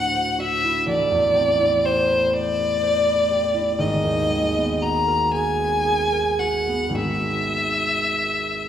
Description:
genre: classical, impressionist duo for violin and harp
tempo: 36-42 BPM (dotted quarters)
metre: 6/8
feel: rubato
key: unclear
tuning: A4 = 439 Hz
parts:
  - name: rich violin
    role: melody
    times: 0.0-8.7 s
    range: C5 to A#5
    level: -20 LUFS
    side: left 1 dB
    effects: none
  - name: concert harp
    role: accompaniment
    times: 0.0-8.7 s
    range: G#1 to C5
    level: -24 LUFS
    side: right 2 dB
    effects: none
room: wet recital hall reverb, RT60 1.5 s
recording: heard from further back in the room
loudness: -18 LUFS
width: side -10 dB against mid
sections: 0.0-8.7 A section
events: none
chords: 0.0 D9; 0.9 Am11; 3.8 G#m9; 6.9 G#aug7

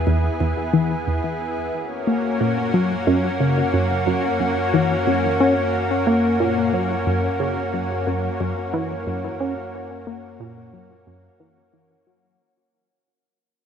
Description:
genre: ambient, sequencer-driven space music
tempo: 90 BPM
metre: 4/4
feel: straight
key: unclear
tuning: A4 = 437 Hz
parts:
  - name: lush unison pad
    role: sustained chords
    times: 0.0-12.4 s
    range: A#3 to G#4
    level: -23 LUFS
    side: equal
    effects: chorus
  - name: tight sequenced synth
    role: riff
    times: 0.0-12.4 s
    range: E2 to C#4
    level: -21 LUFS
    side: left 1 dB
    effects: chorus, ping-pong delay
  - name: warm sub bass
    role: bass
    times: 0.0-12.4 s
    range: E2 to F#2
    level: -32 LUFS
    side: equal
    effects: none
room: moderate plate reverb, RT60 3.7 s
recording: none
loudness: -19 LUFS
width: side -8 dB against mid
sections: 0.0-12.4 A section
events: fade-in on analog synth pad 0.0-12.4; fade-out 5.3-12.4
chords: 0.0 E; 1.7 F#

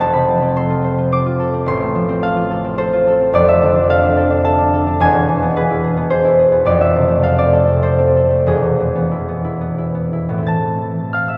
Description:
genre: classical, solo harp piece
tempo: 83-111 BPM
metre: 3/4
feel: rubato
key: unclear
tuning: A4 = 440 Hz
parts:
  - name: concert harp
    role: solo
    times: 0.0-11.4 s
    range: E1 to A6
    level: -15 LUFS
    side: equal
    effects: none
room: wet cathedral reverb, RT60 6.0 s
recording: heard from further back in the room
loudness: -15 LUFS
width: mono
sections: 0.0-10.5 A section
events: none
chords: 0.0 F; 1.7 F/A; 3.3 Dm/F; 5.0 E; 6.7 F; 8.5 E; 10.5 Am

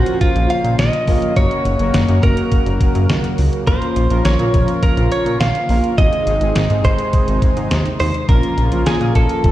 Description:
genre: synth-pop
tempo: 104 BPM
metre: 4/4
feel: straight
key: Bb minor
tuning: A4 = 441 Hz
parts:
  - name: direct-recorded clean electric guitar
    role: melody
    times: 0.0-9.5 s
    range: F4 to F5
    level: -21 LUFS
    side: right 3 dB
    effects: shimmer reverb
  - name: analog synth brass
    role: accompaniment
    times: 0.0-9.5 s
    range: Ab3 to C5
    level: -23 LUFS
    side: left 1 dB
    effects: chorus, shimmer reverb
  - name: brassy analog pad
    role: sustained chords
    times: 0.0-9.5 s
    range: C3 to Gb4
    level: -23 LUFS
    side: left 1 dB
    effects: chorus, tremolo, shimmer reverb
  - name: chorused synth bass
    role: bass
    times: 0.0-9.5 s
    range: F1 to Bb2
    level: -17 LUFS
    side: equal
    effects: none
  - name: detuned 8-bit digital drum machine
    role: drums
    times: 0.1-9.5 s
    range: hi-hat, kick drum, snare drum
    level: -17 LUFS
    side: equal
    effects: none
room: light reverb, digital ambience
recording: played on a big sound system in a bare room, large studio reverb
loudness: -13 LUFS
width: side -14 dB against mid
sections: 0.0-9.5 A section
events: none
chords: 0.0 Bbm; 1.4 Gb; 3.7 Bbm; 6.0 Ab; 8.3 Bbm

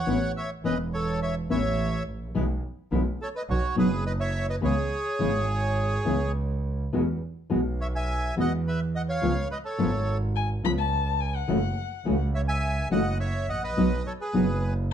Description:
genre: tango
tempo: 105 BPM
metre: 4/4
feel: rubato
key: E major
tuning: A4 = 440 Hz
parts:
  - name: bandoneon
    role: melody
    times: 0.0-14.7 s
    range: F#4 to G#5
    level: -30 LUFS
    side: right 1 dB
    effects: plate reverb
  - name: clear double bass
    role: bass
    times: 0.0-14.9 s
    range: E1 to E2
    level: -28 LUFS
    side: right 1 dB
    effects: none
  - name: nylon-string guitar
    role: accompaniment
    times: 0.1-14.4 s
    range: B2 to F#4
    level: -26 LUFS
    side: left 2 dB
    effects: none
  - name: warm violin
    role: second line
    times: 10.4-12.2 s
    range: F#5 to B5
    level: -30 LUFS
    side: left 9 dB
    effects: none
room: light reverb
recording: dark, warm production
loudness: -24 LUFS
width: side -9 dB against mid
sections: 0.0-14.9 A section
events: none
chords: 0.1 A; 2.3 E/B; 3.5 B; 4.6 C#m; 6.9 E; 9.2 C#; 11.5 F#m7; 13.8 B

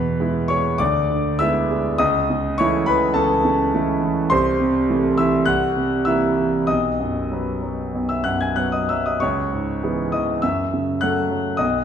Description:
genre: classical, romantic character piece for solo piano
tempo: 92-106 BPM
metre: 4/4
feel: rubato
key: unclear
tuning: A4 = 440 Hz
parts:
  - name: clear concert grand piano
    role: solo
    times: 0.0-11.8 s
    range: B1 to G#6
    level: -18 LUFS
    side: equal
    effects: none
room: wet recital hall reverb, RT60 1.5 s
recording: minimal, uncompressed stereo recording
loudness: -18 LUFS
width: side -8 dB against mid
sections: 0.0-11.8 A section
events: none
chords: 0.0 E; 0.8 E7/D; 2.0 A/C#; 4.3 Am/C; 5.5 C7; 6.7 B; 9.2 C#m7; 10.4 F#m7

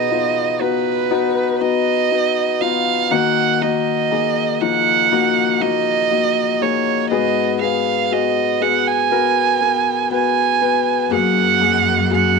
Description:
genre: pop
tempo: 60 BPM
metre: 4/4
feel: straight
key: unclear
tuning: A4 = 440 Hz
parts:
  - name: dark violin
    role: melody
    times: 0.0-12.4 s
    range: B4 to G#5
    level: -17 LUFS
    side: right 11 dB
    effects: none
  - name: warm concert grand piano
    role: accompaniment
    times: 0.0-12.4 s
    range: G#2 to B4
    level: -19 LUFS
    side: left 11 dB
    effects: none
  - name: rich studio cello section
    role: bass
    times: 11.1-12.4 s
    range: F#2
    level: -20 LUFS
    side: right 1 dB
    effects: none
room: light reverb, studio reverb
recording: 1960s-style stereo with parts hard left and right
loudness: -15 LUFS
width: side -4 dB against mid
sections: 0.0-12.4 A section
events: none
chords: 0.0 B; 3.1 D#m; 7.1 G#m7; 11.1 F#add9

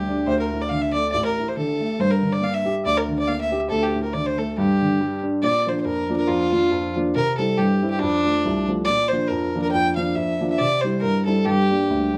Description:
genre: celtic folk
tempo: 139 BPM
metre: 2/4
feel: swing 55% on 8ths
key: G dorian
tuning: A4 = 440 Hz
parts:
  - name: warm fiddle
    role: melody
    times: 0.0-12.1 s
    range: D4 to G5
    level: -25 LUFS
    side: equal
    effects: none
  - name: dark upright piano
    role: accompaniment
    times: 0.0-12.2 s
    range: A1 to G4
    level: -24 LUFS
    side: equal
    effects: none
room: wet studio reverb, RT60 0.5 s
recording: heard from further back in the room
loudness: -22 LUFS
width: mono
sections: 0.0-5.4 A section; 5.4-12.2 B section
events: none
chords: 0.3 D5; 2.0 Gm; 3.7 D5; 4.6 G5; 5.4 Bb; 7.2 C; 8.0 F; 8.9 Bb; 10.6 C; 11.5 Gm

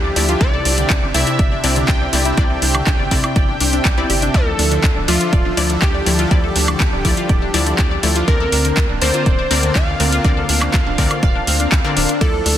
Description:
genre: progressive house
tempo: 122 BPM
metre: 4/4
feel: straight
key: unclear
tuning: A4 = 440 Hz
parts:
  - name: plucky unison lead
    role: melody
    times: 0.0-12.6 s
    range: F4 to G5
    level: -22 LUFS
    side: right 1 dB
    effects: digital delay
  - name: supersaw pad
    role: sustained chords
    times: 0.0-12.6 s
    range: C3 to E5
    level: -26 LUFS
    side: right 2 dB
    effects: sidechain pumping
  - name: tight sequenced synth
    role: arpeggios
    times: 0.0-12.6 s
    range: D3 to D5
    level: -25 LUFS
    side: left 2 dB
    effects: chorus, sidechain pumping, digital delay
  - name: wide unison pluck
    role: stabs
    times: 0.0-12.6 s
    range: C3 to E5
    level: -22 LUFS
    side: left 3 dB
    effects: sidechain pumping, digital delay
  - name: tight sequencer bass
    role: bass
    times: 0.0-12.6 s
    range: D1 to D2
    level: -21 LUFS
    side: equal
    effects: sidechain pumping
  - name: deep house drum kit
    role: drums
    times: 0.2-12.6 s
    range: handclaps, hi-hat, ride cymbal, woodblock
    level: -20 LUFS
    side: equal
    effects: overdrive
  - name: electronic kick drum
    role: drums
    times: 0.4-12.3 s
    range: none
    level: -17 LUFS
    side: equal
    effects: overdrive
room: light reverb, digital ambience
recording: dense, heavily limited modern master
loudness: -13 LUFS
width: side -11 dB against mid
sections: 0.0-12.6 A section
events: none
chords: 0.4 Cadd9; 4.3 Dmadd9; 8.3 Bbadd9/D

